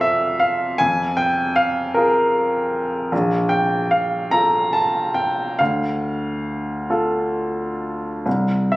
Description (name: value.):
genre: classical, impressionist solo piano.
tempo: 41-53 BPM (dotted quarters).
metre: 6/8.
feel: rubato.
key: unclear.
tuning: A4 = 440 Hz.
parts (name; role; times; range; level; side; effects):
clear baby grand piano; solo; 0.0-8.8 s; Bb1 to Bb5; -18 LUFS; equal; none.
room: moderate recital hall reverb, RT60 1.4 s.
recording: recorded on a phone in the room, club ambience, compression.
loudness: -18 LUFS.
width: side -19 dB against mid.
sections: 0.0-8.8 A section.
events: none.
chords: 0.0 F; 0.8 Bb5/F; 3.1 Bb5; 5.6 Dm; 8.3 N.C..